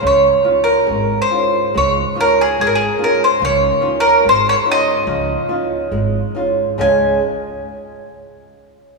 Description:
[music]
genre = fado-style ballad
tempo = 72 BPM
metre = 2/4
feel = rubato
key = Db major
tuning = A4 = 440 Hz
[part]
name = bowl-back mandolin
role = melody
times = 0.0-7.2 s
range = Ab4 to Ab5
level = -16 LUFS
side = left 1 dB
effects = none
[part]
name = nylon-string guitar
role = accompaniment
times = 0.0-7.2 s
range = Db3 to F5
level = -17 LUFS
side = right 2 dB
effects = none
[part]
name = upright bass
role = bass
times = 0.0-7.2 s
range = Ab1 to Db2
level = -25 LUFS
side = right 3 dB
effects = none
[sound]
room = wet church reverb, RT60 3.2 s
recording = recorded in a church or concert hall, small room ambience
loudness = -13 LUFS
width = side -2 dB against mid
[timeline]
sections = 0.0-6.8 A section; 6.8-8.5 B section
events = none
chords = 0.0 Dbadd9

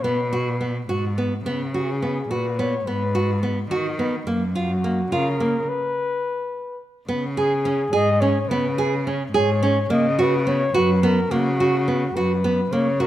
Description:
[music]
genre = contemporary instrumental, chamber music in an uneven meter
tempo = 213 BPM (eighths)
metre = 5/8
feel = straight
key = unclear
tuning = A4 = 439 Hz
[part]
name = breathy flugelhorn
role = melody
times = 0.0-13.1 s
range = Gb4 to Eb5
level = -24 LUFS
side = left 2 dB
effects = none
[part]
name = nylon-string guitar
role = arpeggios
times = 0.0-13.1 s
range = Bb3 to Ab4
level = -23 LUFS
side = right 2 dB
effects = none
[part]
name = warm cello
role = bass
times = 0.0-13.1 s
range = Gb2 to Eb3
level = -24 LUFS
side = equal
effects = none
[sound]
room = light reverb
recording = none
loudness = -19 LUFS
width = side -13 dB against mid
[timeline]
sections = 0.0-7.1 A section; 7.1-13.1 B section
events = stop 5.7-7.1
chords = 0.0 Cb5; 1.5 Db7sus4; 2.9 Abm7; 4.3 Gbmaj7; 5.7 N.C.; 7.1 Db5; 9.9 Cb5

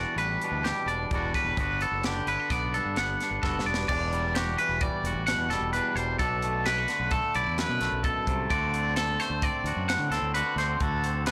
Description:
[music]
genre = math rock and midwest emo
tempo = 130 BPM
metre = 5/4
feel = straight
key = unclear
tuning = A4 = 439 Hz
[part]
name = twangy electric guitar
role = accompaniment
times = 0.0-11.3 s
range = E2 to A4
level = -35 LUFS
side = equal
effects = none
[part]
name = twangy electric guitar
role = arpeggios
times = 0.0-11.3 s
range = G4 to F#5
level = -31 LUFS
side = equal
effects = none
[part]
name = growling fingered electric bass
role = bass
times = 0.0-11.3 s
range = E1 to D3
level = -35 LUFS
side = equal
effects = overdrive
[part]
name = crisp fusion drum kit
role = drums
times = 0.2-11.3 s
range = crash cymbal, hi-hat, kick drum, snare drum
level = -36 LUFS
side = equal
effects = none
[sound]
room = little or no reverb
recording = blown-out, overdriven recording, overdrive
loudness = -28 LUFS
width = mono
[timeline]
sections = 0.0-3.9 A section; 3.9-11.3 B section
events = drum fill 3.4-3.9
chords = 0.0 Em9; 6.2 Bm7; 8.5 D7

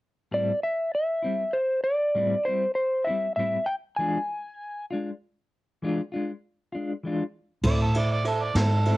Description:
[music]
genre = slow blues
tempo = 66 BPM (dotted quarters)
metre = 12/8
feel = straight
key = A minor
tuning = A4 = 441 Hz
[part]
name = electric slide guitar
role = melody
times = 0.3-4.8 s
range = C5 to G#5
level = -25 LUFS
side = equal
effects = none
[part]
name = clean electric guitar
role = accompaniment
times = 0.3-9.0 s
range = A2 to F4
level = -29 LUFS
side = left 2 dB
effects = tremolo, cassette tape
[part]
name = warm upright piano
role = accompaniment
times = 7.6-9.0 s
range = E4 to E5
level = -31 LUFS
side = right 3 dB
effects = cassette tape
[part]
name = vintage muted fingered electric bass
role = bass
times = 7.6-9.0 s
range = G#2 to A2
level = -23 LUFS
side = equal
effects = none
[part]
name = jazz brush drum kit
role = drums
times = 7.6-9.0 s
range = crash cymbal, kick drum, ride cymbal, snare drum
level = -29 LUFS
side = equal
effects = none
[part]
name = mellow harmonica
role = second line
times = 7.7-9.0 s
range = A4 to D5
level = -29 LUFS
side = right 4 dB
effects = overdrive, cassette tape
[sound]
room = light reverb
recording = home recording on cassette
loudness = -24 LUFS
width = side -18 dB against mid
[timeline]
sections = 0.3-7.6 A section; 7.6-9.0 B section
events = harmonica solo 7.6-9.0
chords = 0.3 Am7; 4.0 E7b9; 7.6 Am

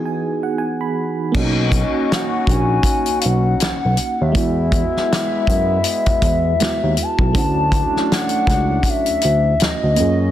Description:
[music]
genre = R&B, neo-soul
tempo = 80 BPM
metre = 4/4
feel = swing 57% on 16ths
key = B major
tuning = A4 = 440 Hz
[part]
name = hollow clarinet-like synth lead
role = melody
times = 0.0-10.3 s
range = B4 to A5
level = -21 LUFS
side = left 2 dB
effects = chorus, slapback echo
[part]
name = FM electric piano with tremolo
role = accompaniment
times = 0.0-10.3 s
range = E3 to B5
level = -23 LUFS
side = right 4 dB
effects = none
[part]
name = bright trombone section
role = stabs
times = 1.3-10.3 s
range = F#3 to F#4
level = -26 LUFS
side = left 6 dB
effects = slapback echo
[part]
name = warm soul drum kit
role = drums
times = 1.3-10.2 s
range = crash cymbal, hi-hat, kick drum, snare drum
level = -20 LUFS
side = equal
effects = none
[part]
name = barky tine electric piano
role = bass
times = 1.4-10.3 s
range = A#1 to F#2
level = -20 LUFS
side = equal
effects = phaser
[sound]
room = light reverb, small room ambience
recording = dense, heavily limited modern master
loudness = -15 LUFS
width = side -12 dB against mid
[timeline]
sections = 0.0-1.3 A section; 1.3-10.3 B section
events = break 0.0-1.3; FM electric piano fill 0.0-1.3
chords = 0.0 Emaj9; 1.3 Bmaj9; 4.3 Eadd9; 7.3 Dmaj9

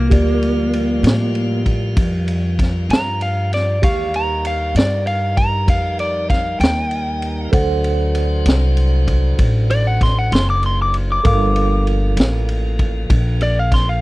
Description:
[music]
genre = slow blues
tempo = 65 BPM (dotted quarters)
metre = 12/8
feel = straight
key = G minor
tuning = A4 = 440 Hz
[part]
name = lightly driven lead guitar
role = melody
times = 0.0-14.0 s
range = Bb3 to D6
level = -20 LUFS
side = left 1 dB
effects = none
[part]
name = mellow tine electric piano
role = accompaniment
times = 0.0-14.0 s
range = G4 to Db6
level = -26 LUFS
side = right 5 dB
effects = medium stereo tremolo
[part]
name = tonewheel organ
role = sustained chords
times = 0.0-14.0 s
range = E3 to D5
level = -28 LUFS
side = equal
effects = slow rotary speaker
[part]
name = upright bass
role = bass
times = 0.0-14.0 s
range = F#1 to A2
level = -18 LUFS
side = equal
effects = none
[part]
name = vintage drum kit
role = drums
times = 0.1-13.9 s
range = kick drum, ride cymbal, snare drum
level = -20 LUFS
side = equal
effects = none
[sound]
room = little or no reverb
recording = dry, close 1970s-style studio recording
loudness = -15 LUFS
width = side -19 dB against mid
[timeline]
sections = 0.0-14.0 A section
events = lead electric guitar solo 0.0-14.0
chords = 0.0 Gm9; 3.8 Eb7; 7.5 D7; 11.2 Gm9

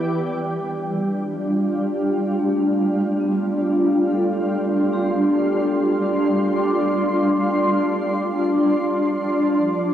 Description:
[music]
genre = ambient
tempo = 56 BPM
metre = 4/4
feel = straight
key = unclear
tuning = A4 = 440 Hz
[part]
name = shimmering ambient pad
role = sustained chords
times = 0.0-9.9 s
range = F3 to C6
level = -18 LUFS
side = equal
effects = chorus, built-in reverb, cassette tape
[part]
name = vibraphone with medium mallets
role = arpeggios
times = 0.4-9.9 s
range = A3 to D6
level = -30 LUFS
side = left 1 dB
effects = cassette tape, analog delay
[sound]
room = wet spring reverb, RT60 1.4 s, small room ambience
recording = home recording on cassette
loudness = -18 LUFS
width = side -10 dB against mid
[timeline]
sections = 0.1-9.9 A section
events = fade-in on vibraphone 0.1-9.9; filter sweep on ambient pad 0.1-9.9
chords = 0.1 G7sus4; 8.7 Fsus2

